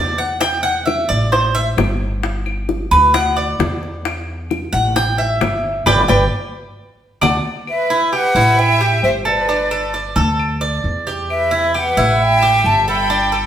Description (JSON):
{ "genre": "latin, Cuban son and guajira", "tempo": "132 BPM", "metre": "4/4", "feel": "straight", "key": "unclear", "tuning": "A4 = 444 Hz", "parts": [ { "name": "Cuban tres", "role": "arpeggios", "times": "0.0-13.5 s", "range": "D4 to A5", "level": "-17 LUFS", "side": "right 1 dB", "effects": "none" }, { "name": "upright bass", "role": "bass", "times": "0.0-13.5 s", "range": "G1 to E2", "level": "-20 LUFS", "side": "equal", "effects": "none" }, { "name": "bongos", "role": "percussion", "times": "0.2-7.3 s", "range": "none", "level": "-22 LUFS", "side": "left 4 dB", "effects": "none" }, { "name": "claves", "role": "percussion", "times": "0.4-13.5 s", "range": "none", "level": "-28 LUFS", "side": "left 5 dB", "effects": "none" }, { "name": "breathy jazz flute", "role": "melody", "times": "7.7-13.5 s", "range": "D5 to B5", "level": "-17 LUFS", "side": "right 1 dB", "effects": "none" }, { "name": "warm studio violin section", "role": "second line", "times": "7.7-13.5 s", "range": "B4 to G5", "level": "-21 LUFS", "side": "equal", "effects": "none" } ], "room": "wet stone room reverb, RT60 1.3 s", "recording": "band playing live in one room", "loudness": "-14 LUFS", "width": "side -10 dB against mid", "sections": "0.0-7.7 A section; 7.7-13.5 B section", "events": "Cuban tres solo 0.0-7.7; band accent 5.9-7.7", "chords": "0.4 Em11; 1.3 Am7; 2.2 G5; 3.1 Dadd9; 4.0 A5; 5.9 G; 6.8 D; 7.7 Emadd9; 8.6 A5; 9.5 Gadd9; 10.4 D5; 11.3 Emadd9; 12.2 A5" }